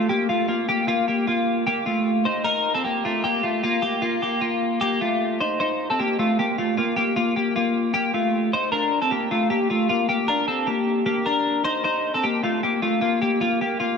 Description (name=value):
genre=indie pop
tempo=153 BPM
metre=4/4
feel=straight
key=unclear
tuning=A4 = 439 Hz
part: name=clean electric guitar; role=solo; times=0.0-14.0 s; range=A3 to C5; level=-20 LUFS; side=left 1 dB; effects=analog chorus
room=wet cathedral reverb, RT60 4.1 s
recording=dreamy mix soaked in reverb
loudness=-20 LUFS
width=side -6 dB against mid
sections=0.0-5.6 A section; 5.6-14.0 B section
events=none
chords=0.0 Cm7 (rootless); 8.7 Gm; 11.7 Eb6